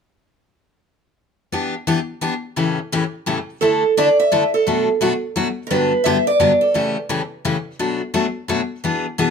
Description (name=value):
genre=jazz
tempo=172 BPM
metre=3/4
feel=swing 62% on 8ths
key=D major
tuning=A4 = 441 Hz
part: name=picked steel-string acoustic guitar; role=accompaniment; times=1.5-9.3 s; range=G2 to A4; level=-20 LUFS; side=left 3 dB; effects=none
part: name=picked acoustic archtop guitar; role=melody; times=3.6-6.9 s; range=A4 to E5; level=-16 LUFS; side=right 2 dB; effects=none
room=moderate studio reverb, RT60 0.8 s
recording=none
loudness=-17 LUFS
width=side -6 dB against mid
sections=1.5-3.6 A section; 3.6-9.3 B section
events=none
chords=1.5 Em7; 2.6 A7; 3.6 Dsus2; 4.7 Bm7; 5.7 Gmaj7; 6.7 A7; 7.8 Bm7